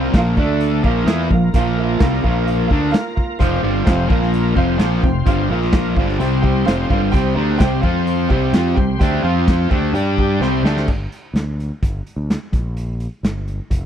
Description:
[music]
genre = classic rock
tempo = 128 BPM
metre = 4/4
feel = straight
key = unclear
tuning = A4 = 440 Hz
[part]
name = warm baby grand piano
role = accompaniment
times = 0.0-10.8 s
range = D4 to Bb5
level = -26 LUFS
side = right 6 dB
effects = none
[part]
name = bright tonewheel organ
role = sustained chords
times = 0.0-10.9 s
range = A3 to D5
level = -28 LUFS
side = left 1 dB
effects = slow rotary speaker, overdrive, chorus vibrato
[part]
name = distorted electric guitar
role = riff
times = 0.0-10.9 s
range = F2 to G4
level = -19 LUFS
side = left 1 dB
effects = distortion
[part]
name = growling fingered electric bass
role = bass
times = 0.0-13.9 s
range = F1 to G2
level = -20 LUFS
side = equal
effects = overdrive
[part]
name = raw garage drum kit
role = drums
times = 0.1-13.8 s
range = crash cymbal, hi-hat, kick drum, snare drum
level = -18 LUFS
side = equal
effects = none
[sound]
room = studio reverb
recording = dry, close 1970s-style studio recording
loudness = -15 LUFS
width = side -9 dB against mid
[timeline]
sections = 0.0-10.9 A section; 10.9-13.9 B section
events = drum fill 10.4-10.9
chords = 0.4 D5; 0.8 Bb5; 3.4 F5; 4.1 Bb5; 4.6 F5; 5.5 Bb5; 6.0 F5; 6.2 C5; 6.7 F5; 7.1 C5; 7.8 F5; 8.3 C5; 9.2 F5; 9.7 C5; 9.9 G5; 10.4 C5; 10.9 G5; 12.5 Bb5

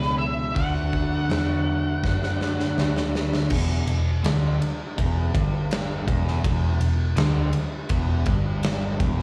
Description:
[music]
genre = blues rock power trio and southern rock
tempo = 82 BPM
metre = 4/4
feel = straight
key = unclear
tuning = A4 = 444 Hz
[part]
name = octave-fuzz lead guitar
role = melody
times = 0.0-3.1 s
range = B4 to F#5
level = -32 LUFS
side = equal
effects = distortion, slapback echo
[part]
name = bright tonewheel organ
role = sustained chords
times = 0.0-3.4 s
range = G#3 to B4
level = -40 LUFS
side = equal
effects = none
[part]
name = crunchy overdriven guitar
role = riff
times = 0.0-9.2 s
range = E2 to D4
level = -30 LUFS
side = equal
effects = none
[part]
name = vintage muted picked electric bass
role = bass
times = 0.0-9.2 s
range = E1 to F#2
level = -27 LUFS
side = equal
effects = none
[part]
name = huge arena drum kit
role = drums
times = 0.0-9.2 s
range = crash cymbal, hi-hat, kick drum, ride cymbal, snare drum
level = -29 LUFS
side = equal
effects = none
[sound]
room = little or no reverb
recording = live gig heard through the venue's PA, club reverb, studio reverb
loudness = -24 LUFS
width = mono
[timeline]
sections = 0.0-3.5 A section; 3.5-9.2 B section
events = drum fill 2.0-3.5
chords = 0.0 E; 0.6 D; 3.5 N.C.

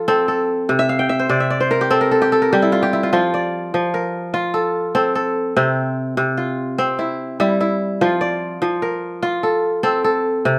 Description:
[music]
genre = west african traditional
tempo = 98 BPM (dotted quarters)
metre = 12/8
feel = straight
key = F major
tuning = A4 = 440 Hz
[part]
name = kora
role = solo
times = 0.0-10.6 s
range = C3 to G5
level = -19 LUFS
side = equal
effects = none
[sound]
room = moderate studio reverb, RT60 0.8 s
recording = band playing live in one room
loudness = -19 LUFS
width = mono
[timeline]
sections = 0.0-10.6 A section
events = kora fill 0.8-3.1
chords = 0.0 F; 0.7 C5; 3.1 F; 5.6 C; 8.0 F

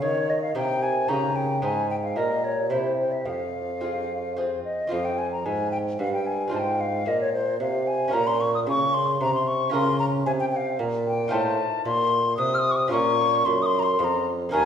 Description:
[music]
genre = classical, baroque-style sonata movement with continuo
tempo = 112 BPM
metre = 3/4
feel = straight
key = F minor, Bb minor from 11.3 s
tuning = A4 = 440 Hz
[part]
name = hollow wooden flute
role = melody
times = 0.0-14.7 s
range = C5 to F6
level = -25 LUFS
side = left 3 dB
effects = none
[part]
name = lute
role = accompaniment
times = 0.0-14.7 s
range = Eb2 to C5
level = -31 LUFS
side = right 2 dB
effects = none
[part]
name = mellow bassoon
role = bass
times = 0.0-14.7 s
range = Eb2 to Eb3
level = -26 LUFS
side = right 1 dB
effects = none
[sound]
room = wet recital hall reverb, RT60 1.5 s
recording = heard from further back in the room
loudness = -22 LUFS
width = side -8 dB against mid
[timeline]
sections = 0.0-4.9 A section; 4.9-14.7 B section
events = none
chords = 0.0 Eb; 1.6 Ab; 2.2 Gdim/Bb; 2.7 C; 3.3 Fm; 6.5 Fm/Ab; 8.1 Bbm; 11.3 F7/A; 12.9 Bbm

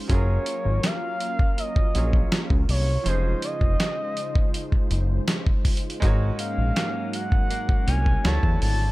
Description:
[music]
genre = contemporary R&B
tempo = 81 BPM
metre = 4/4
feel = straight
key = Db major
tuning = A4 = 437 Hz
[part]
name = bright grand piano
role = accompaniment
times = 0.0-8.9 s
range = D3 to Db5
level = -35 LUFS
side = right 4 dB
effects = none
[part]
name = warm analog pad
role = sustained chords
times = 0.0-8.9 s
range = Db3 to C#5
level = -34 LUFS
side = equal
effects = chorus
[part]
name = gliding portamento lead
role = melody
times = 0.1-8.9 s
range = C5 to A5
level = -30 LUFS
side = equal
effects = chorus, tape echo
[part]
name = fat analog bass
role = bass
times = 0.1-8.9 s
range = F1 to E2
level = -23 LUFS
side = equal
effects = none
[part]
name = dusty soul sampler-style drum kit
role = drums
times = 0.1-8.8 s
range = hi-hat, kick drum, snare drum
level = -23 LUFS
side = equal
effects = none
[part]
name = direct-recorded clean electric guitar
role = arpeggios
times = 6.0-8.9 s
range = Ab2 to Db4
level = -33 LUFS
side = left 4 dB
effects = vibrato effect
[sound]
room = digital ambience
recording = none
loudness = -21 LUFS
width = side -19 dB against mid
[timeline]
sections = 0.0-8.9 A section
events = none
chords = 0.1 Gbmaj7; 3.1 Dbmaj9/F; 6.0 Ab9sus4; 8.2 Dmaj9

